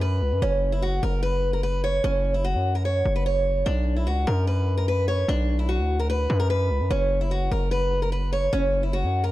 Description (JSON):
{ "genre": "hip hop, trap", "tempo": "148 BPM", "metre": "4/4", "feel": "half-time", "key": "unclear", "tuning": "A4 = 440 Hz", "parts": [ { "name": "picked old ladder-braced acoustic guitar", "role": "melody", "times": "0.0-9.3 s", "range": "C#4 to C#5", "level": "-25 LUFS", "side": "equal", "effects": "none" }, { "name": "distorted 808-style bass", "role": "bass", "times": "0.0-9.3 s", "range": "F#1 to F#2", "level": "-24 LUFS", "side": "equal", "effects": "distortion" } ], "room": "light reverb, studio reverb", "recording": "dark, warm production", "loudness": "-21 LUFS", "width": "side -16 dB against mid", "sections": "0.0-9.3 A section", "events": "none", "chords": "0.4 F#5; 3.7 Bm; 6.9 F#5" }